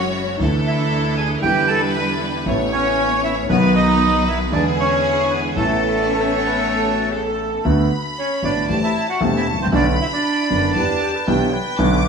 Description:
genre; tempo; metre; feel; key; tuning
tango; 116 BPM; 4/4; rubato; A major, D major from 7.6 s; A4 = 441 Hz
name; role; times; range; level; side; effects
bright studio violin section; second line; 0.0-12.1 s; G#4 to D6; -26 LUFS; left 1 dB; none
warm concert grand piano; accompaniment; 0.0-12.0 s; E1 to G4; -20 LUFS; equal; none
clear studio string section; stabs; 0.0-7.5 s; D3 to F#4; -26 LUFS; left 1 dB; none
upright bass; bass; 0.0-12.0 s; E1 to E2; -26 LUFS; right 1 dB; none
bandoneon; melody; 0.7-11.1 s; A3 to B5; -20 LUFS; right 1 dB; analog delay
concert flute; second line; 6.1-7.6, 10.8-12.1 s; F#4 to C#5; -25 LUFS; equal; none
room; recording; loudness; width
wet stone room reverb, RT60 1.0 s; band playing live in one room, studio reverb; -16 LUFS; side -6 dB against mid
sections
0.0-7.6 A section; 7.6-12.1 B section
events
none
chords
0.4 Dsus2; 1.4 Em7; 2.5 Aadd9; 3.5 B; 4.5 E7; 5.6 Aadd9; 7.6 D6; 8.7 Am7; 9.7 Bmadd9; 10.8 Em7

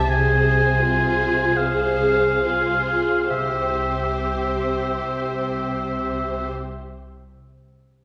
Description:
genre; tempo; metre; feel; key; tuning
classical, slow romantic movement for symphony orchestra; 32-44 BPM; 4/4; rubato; C major; A4 = 439 Hz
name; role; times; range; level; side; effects
warm symphonic violin section; melody; 0.0-6.5 s; Ab4 to C5; -36 LUFS; equal; none
rich symphonic violin section; second line; 0.0-6.5 s; Ab4 to C5; -33 LUFS; equal; none
warm oboe; second line; 0.0-6.5 s; E5 to A5; -25 LUFS; equal; none
warm chamber viola section; accompaniment; 0.0-6.5 s; F4 to Ab4; -28 LUFS; equal; none
concert harp; arpeggios; 0.0-7.2 s; C3 to G5; -32 LUFS; equal; none
dark symphonic cello section; bass; 0.0-6.5 s; C3; -30 LUFS; equal; none
rich symphonic double bass section; bass; 0.0-6.5 s; C2; -32 LUFS; equal; none
room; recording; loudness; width
wet recital hall reverb, RT60 1.6 s; recorded in a church or concert hall; -21 LUFS; mono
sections
0.0-3.3 A section; 3.3-8.0 B section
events
slowing down 0.0-3.3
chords
0.1 Fm/C; 3.3 C

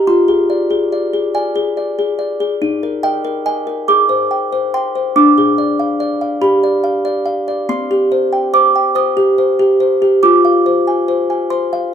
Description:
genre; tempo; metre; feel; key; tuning
classical, lullaby for music box; 47 BPM (dotted quarters); 6/8; straight; C minor; A4 = 438 Hz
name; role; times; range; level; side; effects
music box; solo; 0.0-11.9 s; C4 to Eb6; -12 LUFS; equal; none
room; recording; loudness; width
wet large studio reverb, RT60 0.9 s; band playing live in one room; -12 LUFS; side -8 dB against mid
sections
0.0-11.9 A section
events
none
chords
0.1 Dm7b5/F; 2.6 Eb5; 3.9 Abmaj7; 5.2 Ddim; 6.4 G7; 7.7 Cm; 10.2 Fm

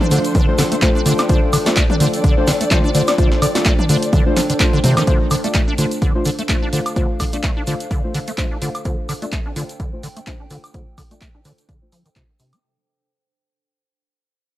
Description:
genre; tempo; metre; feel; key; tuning
acid house; 127 BPM; 4/4; swing 56% on 16ths; D minor; A4 = 440 Hz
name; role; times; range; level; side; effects
dark studio string section; sustained chords; 0.0-5.1 s; F3 to D5; -24 LUFS; left 1 dB; sidechain pumping
acid bass, square; riff; 0.0-12.6 s; C3 to D4; -21 LUFS; equal; ensemble chorus, cassette tape, sidechain pumping, analog delay
punchy analog drum machine; drums; 0.0-12.6 s; handclaps, hi-hat, snare drum, toms, woodblock; -22 LUFS; equal; none
warbly tape-like pad; texture; 0.0-12.6 s; D4 to G5; -27 LUFS; right 1 dB; chorus, built-in reverb, sidechain pumping
deep mellow chord stab; stabs; 0.1-12.5 s; A3 to D5; -23 LUFS; left 2 dB; chorus, analog delay
egg shaker; percussion; 0.1-12.6 s; none; -32 LUFS; right 2 dB; none
electronic kick drum; drums; 0.3-12.3 s; none; -18 LUFS; equal; none
room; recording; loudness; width
digital ambience; dry, gritty hardware recording; -15 LUFS; side -14 dB against mid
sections
0.0-5.1 A section; 5.1-12.6 B section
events
drop 0.0-5.1; fade-out 5.1-12.6; filter sweep on acid bass 5.1-12.6; filter sweep on synth stab 5.1-12.6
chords
0.0 Dm7

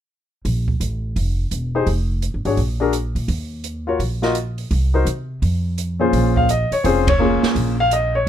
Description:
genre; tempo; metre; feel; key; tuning
jazz piano trio; 169 BPM; 4/4; swing 64% on 8ths; Bb minor; A4 = 440 Hz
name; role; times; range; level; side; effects
upright bass; bass; 0.4-8.3 s; E1 to C3; -20 LUFS; right 1 dB; none
open jazz drum kit; drums; 0.4-8.3 s; hi-hat, kick drum, ride cymbal, snare drum; -26 LUFS; right 3 dB; none
warm baby grand piano; melody; 1.8-8.3 s; Bb2 to F5; -18 LUFS; left 2 dB; none
room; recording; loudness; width
little or no reverb; close, detailed microphones; -17 LUFS; side -10 dB against mid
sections
0.4-6.1 A section; 6.1-8.3 B section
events
band accent 7.0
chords
0.4 Bb5; 1.9 Fmadd9; 2.6 N.C.; 3.3 Eb5; 4.7 N.C.; 5.4 F5; 6.1 Bbm7

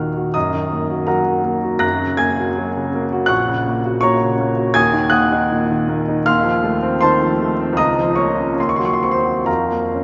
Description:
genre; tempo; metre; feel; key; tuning
classical, romantic character piece for solo piano; 80 BPM; 2/4; rubato; Bb minor from 4.8 s; A4 = 438 Hz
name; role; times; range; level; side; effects
clear grand piano; solo; 0.0-10.0 s; Bb1 to Bb6; -18 LUFS; equal; none
room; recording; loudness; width
wet church reverb, RT60 3.1 s; nothing above 7.5 kHz; -18 LUFS; mono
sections
0.0-10.0 A section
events
none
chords
0.3 Ebm/Gb; 1.8 Gb; 3.3 Gb/Bb; 4.8 Ebm; 6.3 F7/Eb; 7.8 Bbm/Db; 8.6 Cdim/Eb; 9.5 Bbm/F

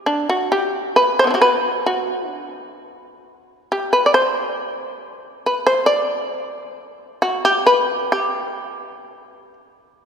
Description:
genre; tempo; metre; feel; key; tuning
japanese traditional, Japanese chamber music; 60-70 BPM; 2/4; rubato; G ryukyu; A4 = 440 Hz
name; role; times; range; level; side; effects
shamisen; solo; 0.1-9.5 s; B3 to D5; -16 LUFS; equal; none
room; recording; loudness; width
wet church reverb, RT60 3.1 s; recorded in a church or concert hall; -16 LUFS; side -7 dB against mid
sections
0.0-10.1 A section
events
none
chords
none

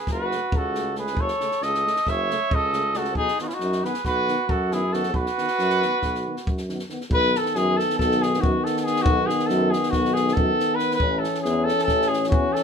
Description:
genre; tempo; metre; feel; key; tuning
balkan folk, Balkan brass band; 275 BPM (eighths); 9/8; straight; B mixolydian; A4 = 440 Hz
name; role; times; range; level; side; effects
clear flugelhorn; melody; 0.0-12.6 s; E4 to E5; -24 LUFS; left 1 dB; none
mellow trumpet; second line; 0.0-6.6 s; C#4 to C#5; -28 LUFS; right 4 dB; none
clear tuba; bass; 0.1-12.4 s; F#1 to F#2; -27 LUFS; equal; none
compact cocktail drum kit; percussion; 0.1-12.6 s; kick drum, snare drum; -28 LUFS; equal; none
dark trombone; accompaniment; 0.3-12.6 s; C#3 to E3; -31 LUFS; right 5 dB; none
warm euphonium; accompaniment; 0.3-12.6 s; A3 to C#4; -28 LUFS; left 4 dB; none
room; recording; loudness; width
moderate studio reverb, RT60 0.6 s; minimal, uncompressed stereo recording; -20 LUFS; side -6 dB against mid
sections
0.0-7.1 A section; 7.1-12.6 B section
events
none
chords
0.0 F#m; 3.2 B; 11.0 A

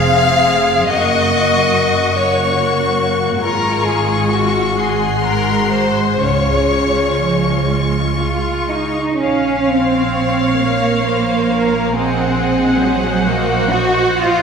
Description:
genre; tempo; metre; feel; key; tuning
classical, slow romantic movement for string orchestra; 40-49 BPM (dotted quarters); 6/8; rubato; Db major, Bb minor from 9.2 s; A4 = 439 Hz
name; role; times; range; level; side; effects
rich chamber violin section; melody; 0.0-14.4 s; F5 to Db6; -22 LUFS; left 3 dB; none
rich chamber violin section; second line; 0.0-14.4 s; Gb4 to F5; -18 LUFS; left 2 dB; none
rich chamber viola section; accompaniment; 0.0-14.4 s; Ab3 to Gb5; -20 LUFS; left 1 dB; none
dark chamber double bass section; bass; 0.0-14.4 s; F1 to Db2; -22 LUFS; right 3 dB; none
warm studio cello section; bass; 0.0-14.4 s; F2 to Gb4; -18 LUFS; right 2 dB; none
room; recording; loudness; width
wet scoring stage reverb, RT60 1.7 s; recorded in a church or concert hall; -13 LUFS; side -6 dB against mid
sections
0.0-9.2 A section; 9.2-14.4 B section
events
none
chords
0.0 Fm; 0.9 Gb; 3.4 Db/Ab; 4.8 Ab7; 6.2 Db; 9.2 Bbm; 12.0 Cm7b5/Bb

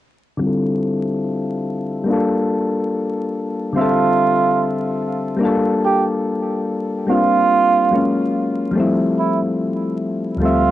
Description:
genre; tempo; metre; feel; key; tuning
hip hop; 72 BPM; 4/4; swing 58% on 16ths; unclear; A4 = 440 Hz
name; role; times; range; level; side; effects
soft electric-piano-like synth keys; accompaniment; 0.4-10.7 s; D2 to E5; -18 LUFS; left 2 dB; chorus, cassette tape, low-pass filter
trumpet with cup mute; melody; 3.8-10.7 s; E4 to G4; -18 LUFS; right 5 dB; low-pass filter, cassette tape, tape echo
room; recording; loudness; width
light reverb; home recording on cassette, vinyl crackle, nothing above 10.5 kHz; -16 LUFS; side -13 dB against mid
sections
0.4-3.7 A section; 3.7-10.7 B section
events
filter sweep on synth keys 0.4-3.7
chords
0.4 Dm11; 2.1 Gm9; 3.7 Dm11; 5.4 Gm9; 7.1 C9sus4; 7.9 F#maj7; 8.7 Fmaj7

